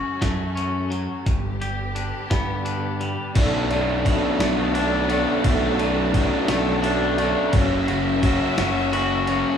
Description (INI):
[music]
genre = post-rock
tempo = 57 BPM (dotted quarters)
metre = 6/8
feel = straight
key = B minor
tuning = A4 = 439 Hz
[part]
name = clear studio string section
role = sustained chords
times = 0.0-9.6 s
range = D3 to E5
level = -30 LUFS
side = left 1 dB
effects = none
[part]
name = twangy electric guitar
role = arpeggios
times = 0.0-9.6 s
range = B1 to G4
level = -26 LUFS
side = left 3 dB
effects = none
[part]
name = growling fingered electric bass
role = bass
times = 0.2-9.4 s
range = F#1 to G2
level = -28 LUFS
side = equal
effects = overdrive
[part]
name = dusty soul sampler-style drum kit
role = drums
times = 0.2-9.4 s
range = crash cymbal, hi-hat, kick drum, ride cymbal, snare drum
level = -25 LUFS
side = equal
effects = none
[part]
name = raw garage guitar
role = riff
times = 3.4-9.6 s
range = B1 to F#4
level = -22 LUFS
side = right 1 dB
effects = overdrive
[sound]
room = wet recital hall reverb, RT60 1.4 s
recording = recorded in a church or concert hall, small room reverb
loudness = -19 LUFS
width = side -8 dB against mid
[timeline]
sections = 0.0-3.4 A section; 3.4-9.6 B section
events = none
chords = 0.0 F#m7; 1.3 G; 3.4 Bm7; 7.5 F#7